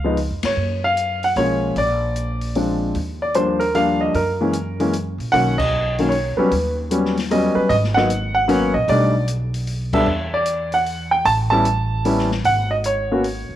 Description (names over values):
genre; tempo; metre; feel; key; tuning
jazz piano trio; 152 BPM; 3/4; swing 65% on 8ths; B major from 5.3 s; A4 = 440 Hz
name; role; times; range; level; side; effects
warm baby grand piano; melody; 0.0-13.6 s; D#3 to A5; -18 LUFS; equal; none
upright bass; bass; 0.0-13.5 s; G#1 to G2; -24 LUFS; right 1 dB; none
open jazz drum kit; drums; 0.2-13.4 s; crash cymbal, hi-hat, kick drum, ride cymbal, snare drum; -31 LUFS; left 3 dB; none
room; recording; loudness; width
studio reverb; 1960s-style stereo; -17 LUFS; side -12 dB against mid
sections
0.0-5.3 A section; 5.3-13.6 B section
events
band accent 0.4, 5.5, 9.9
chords
0.0 Db7; 0.6 Gbmaj7; 1.8 Bb7; 3.0 Ebmaj9; 4.1 Gb9; 5.3 Bmaj9; 6.5 D#7alt; 7.7 G#m9; 8.9 Bm7b13; 10.1 Esus2; 11.3 A9; 12.4 G#7sus4